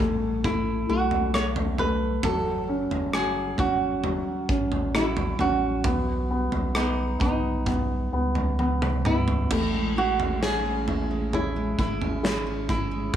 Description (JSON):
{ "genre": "pop ballad", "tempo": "66 BPM", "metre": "4/4", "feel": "straight", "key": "unclear", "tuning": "A4 = 445 Hz", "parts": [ { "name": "flamenco guitar", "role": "melody", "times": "0.0-13.2 s", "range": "D#4 to C#5", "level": "-29 LUFS", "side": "right 2 dB", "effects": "slapback echo" }, { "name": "warm baby grand piano", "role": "accompaniment", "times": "0.0-13.2 s", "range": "F#3 to C#5", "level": "-28 LUFS", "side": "left 2 dB", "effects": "none" }, { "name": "warm sub bass", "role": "bass", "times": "0.0-13.2 s", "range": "F#1 to C#2", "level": "-30 LUFS", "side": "equal", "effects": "none" }, { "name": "modern studio drum kit", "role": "drums", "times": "0.0-13.2 s", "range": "crash cymbal, kick drum, rim click, snare drum, toms", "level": "-29 LUFS", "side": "right 1 dB", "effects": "none" }, { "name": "picked steel-string acoustic guitar", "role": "arpeggios", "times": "9.5-13.2 s", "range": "A2 to E4", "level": "-31 LUFS", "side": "right 4 dB", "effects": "none" } ], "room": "small room ambience", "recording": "none", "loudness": "-23 LUFS", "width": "side -10 dB against mid", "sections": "0.0-9.5 A section; 9.5-13.2 B section", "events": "drum fill 8.6-9.5", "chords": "0.0 Asus2; 2.2 F#m; 5.8 B; 9.5 Amaj7" }